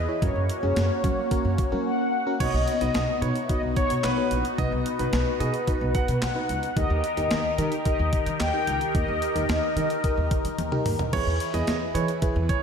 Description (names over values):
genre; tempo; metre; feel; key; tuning
synth-pop; 110 BPM; 4/4; straight; B major; A4 = 440 Hz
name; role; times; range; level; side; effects
mellow synth brass; melody; 0.0-10.8 s; B4 to G5; -28 LUFS; left 3 dB; chorus, ping-pong delay
phased analog pad; sustained chords; 0.0-12.6 s; D#3 to B4; -30 LUFS; left 1 dB; phaser, chorus
upright bass; bass; 0.0-12.5 s; A#1 to F#3; -28 LUFS; equal; none
mellow FM electric piano; accompaniment; 0.1-12.6 s; C#4 to C#5; -32 LUFS; right 3 dB; chorus
clean 12-bit digital drum machine; drums; 0.2-12.6 s; crash cymbal, handclaps, hi-hat, kick drum, snare drum, toms; -28 LUFS; equal; none
warm concert grand piano; second line; 2.4-6.1, 11.1-12.6 s; B4 to F#5; -31 LUFS; right 4 dB; ping-pong delay
room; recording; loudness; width
moderate lush hall reverb, RT60 1.8 s, digital ambience; dreamy mix soaked in reverb; -22 LUFS; side -6 dB against mid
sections
0.0-2.4 A section; 2.4-12.6 B section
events
silent gap 1.9-2.4; drum fill 10.6-11.1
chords
0.2 F#; 2.4 B; 6.8 D#; 11.1 E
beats
| 0.22 0.77 1.31 1.86 | 2.40 2.95 3.49 4.04 | 4.58 5.13 5.67 6.22 | 6.77 7.31 7.86 8.40 | 8.95 9.49 10.04 10.58 | 11.13 11.68 12.22